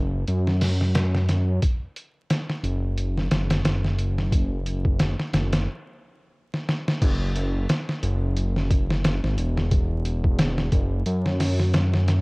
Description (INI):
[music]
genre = trip hop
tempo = 89 BPM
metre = 4/4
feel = swing 57% on 16ths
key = unclear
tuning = A4 = 439 Hz
[part]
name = dark detuned saw bass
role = bass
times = 0.0-12.2 s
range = E1 to F#2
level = -23 LUFS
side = equal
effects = tube saturation
[part]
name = trip hop sampler-style drum kit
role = drums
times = 0.3-12.2 s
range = crash cymbal, hi-hat, kick drum, snare drum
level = -24 LUFS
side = equal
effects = none
[sound]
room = little or no reverb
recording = worn, warbling old tape, cassette tape, vinyl crackle, warbly pitch drift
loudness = -21 LUFS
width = side -32 dB against mid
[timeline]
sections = 0.0-7.0 A section; 7.0-12.2 B section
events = stop 5.7-7.0; drum fill 6.5-7.0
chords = none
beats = 0.28 0.95 | 1.63 2.30 2.98 3.65 | 4.32 5.00 5.67 6.34 | 7.02 7.69 8.37 9.04 | 9.72 10.39 11.06 11.74